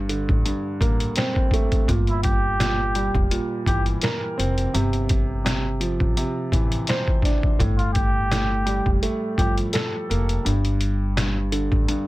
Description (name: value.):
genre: hip hop, boom-bap hip-hop.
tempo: 84 BPM.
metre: 4/4.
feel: swing 55% on 16ths.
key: G dorian.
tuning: A4 = 441 Hz.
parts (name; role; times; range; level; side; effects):
dark grand piano; accompaniment; 0.0-12.1 s; G2 to C5; -26 LUFS; right 1 dB; cassette tape, high-pass filter, low-pass filter.
upright bass; bass; 0.0-11.8 s; E1 to A1; -24 LUFS; equal; none.
trip hop sampler-style drum kit; drums; 0.1-12.1 s; hi-hat, kick drum, snare drum; -22 LUFS; equal; none.
trumpet with cup mute; melody; 2.1-9.6 s; E4 to G4; -27 LUFS; equal; high-pass filter, low-pass filter, digital delay.
room: little or no reverb.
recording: none.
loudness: -20 LUFS.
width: side -18 dB against mid.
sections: 0.0-12.1 A section.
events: none.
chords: 0.0 Bbmaj9/G; 1.9 C7; 4.7 Dm9/G; 7.6 Gm9; 10.5 N.C..